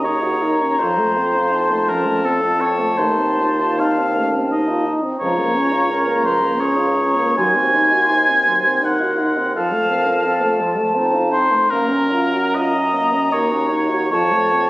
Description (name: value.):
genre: classical, slow romantic movement for wind quintet.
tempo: 68-87 BPM.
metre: 3/4.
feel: rubato.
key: unclear.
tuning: A4 = 440 Hz.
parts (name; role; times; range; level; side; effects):
mellow concert flute; melody; 0.0-14.7 s; A5 to C6; -22 LUFS; left 1 dB; none.
warm oboe; second line; 0.0-14.7 s; A4 to Ab5; -18 LUFS; equal; none.
clear French horn; accompaniment; 0.0-14.7 s; F3 to Gb4; -23 LUFS; equal; none.
mellow clarinet; accompaniment; 0.0-14.7 s; C4 to C5; -28 LUFS; right 2 dB; none.
dark bassoon; bass; 0.0-14.7 s; Db2 to Gb2; -23 LUFS; equal; none.
room: moderate scoring stage reverb, RT60 1.5 s.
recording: recorded on a phone in the room, studio reverb.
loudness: -15 LUFS.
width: side -18 dB against mid.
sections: 0.0-14.7 A section.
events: none.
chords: 0.0 Ebm7; 0.8 F; 3.0 F7/Eb; 5.2 Bbm/Db; 7.4 Cdim/Eb; 9.6 F; 11.7 Gbmaj7; 13.3 Ebm7; 14.1 F.